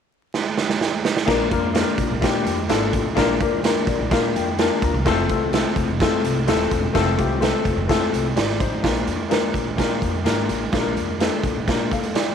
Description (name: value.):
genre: uptempo 1960s-style soul.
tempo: 127 BPM.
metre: 4/4.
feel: straight.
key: Bb major.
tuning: A4 = 439 Hz.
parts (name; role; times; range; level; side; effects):
raw garage drum kit; drums; 0.3-12.3 s; crash cymbal, hi-hat, kick drum, snare drum; -22 LUFS; right 5 dB; none.
warm grand piano; accompaniment; 1.3-12.3 s; A3 to Bb5; -22 LUFS; left 8 dB; none.
upright bass; bass; 1.3-12.3 s; Eb1 to Bb2; -27 LUFS; equal; none.
room: moderate plate reverb, RT60 1.9 s.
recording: 1960s-style stereo, vinyl crackle.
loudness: -18 LUFS.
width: side -7 dB against mid.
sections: 0.0-1.3 A section; 1.3-8.8 B section; 8.8-12.3 C section.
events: drum fill 0.3-1.3; grand piano fill 3.6-5.1.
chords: 0.0 N.C.; 1.3 Bb; 5.1 F; 8.8 Bb.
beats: 0.33 0.80 | 1.28 1.75 2.22 2.69 | 3.17 3.64 4.11 4.59 | 5.06 5.53 6.00 6.48 | 6.95 7.42 7.89 8.37 | 8.84 9.31 9.78 10.26 | 10.73 11.20 11.67 12.15.